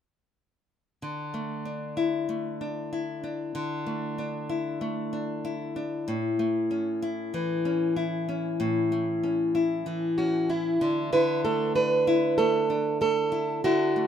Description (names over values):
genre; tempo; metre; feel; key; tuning
pop; 95 BPM; 4/4; swing 55% on 16ths; unclear; A4 = 445 Hz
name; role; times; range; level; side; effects
nylon-string guitar; accompaniment; 1.0-14.1 s; A2 to E4; -27 LUFS; left 2 dB; none
fingerpicked plugged-in steel-string acoustic guitar; melody; 10.2-14.1 s; E4 to B4; -24 LUFS; right 4 dB; none
room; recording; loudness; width
light reverb; minimal, uncompressed stereo recording; -25 LUFS; side -9 dB against mid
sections
1.0-11.1 A section; 11.1-14.1 B section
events
none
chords
1.0 Dsus2; 6.1 A; 10.8 N.C.; 11.1 Dsus2